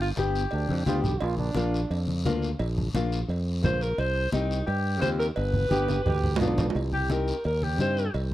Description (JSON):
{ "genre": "latin, cumbia", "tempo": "173 BPM", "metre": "4/4", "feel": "straight", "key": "C minor", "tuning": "A4 = 441 Hz", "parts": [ { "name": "warm alto saxophone", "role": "melody", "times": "0.0-1.0, 3.6-8.1 s", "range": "Eb4 to C5", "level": "-29 LUFS", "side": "equal", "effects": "none" }, { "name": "fingered electric bass", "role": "bass", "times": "0.0-8.3 s", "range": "G1 to G2", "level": "-28 LUFS", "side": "equal", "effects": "none" }, { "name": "nylon-string guitar", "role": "accompaniment", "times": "0.2-8.0 s", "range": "Bb3 to G4", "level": "-31 LUFS", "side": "left 4 dB", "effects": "none" }, { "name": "congas", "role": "percussion", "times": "0.2-8.3 s", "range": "none", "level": "-31 LUFS", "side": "left 1 dB", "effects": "none" }, { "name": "cowbell and timbales", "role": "percussion", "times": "0.2-8.3 s", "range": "none", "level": "-34 LUFS", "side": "right 5 dB", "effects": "none" }, { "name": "guiro", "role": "percussion", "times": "0.2-8.3 s", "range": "none", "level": "-43 LUFS", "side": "left 3 dB", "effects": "none" }, { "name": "bright trombone", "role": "second line", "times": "0.5-2.0, 5.7-6.8 s", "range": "D4 to G4", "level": "-33 LUFS", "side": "right 5 dB", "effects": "none" } ], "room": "small room ambience", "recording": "dry, close 1970s-style studio recording", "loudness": "-24 LUFS", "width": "side -14 dB against mid", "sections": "0.0-6.8 A section; 6.8-8.3 B section", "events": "drum fill 0.7-1.2, 5.9-6.8; alto saxophone solo 6.8-8.3", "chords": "0.0 G; 1.2 Bb; 4.0 Cm; 5.4 G; 6.8 Cm", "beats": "0.17 0.52 0.87 | 1.21 1.56 1.91 2.25 | 2.60 2.95 3.29 3.64 | 3.99 4.33 4.68 5.03 | 5.37 5.72 6.07 6.42 | 6.76 7.11 7.46 7.80 | 8.15" }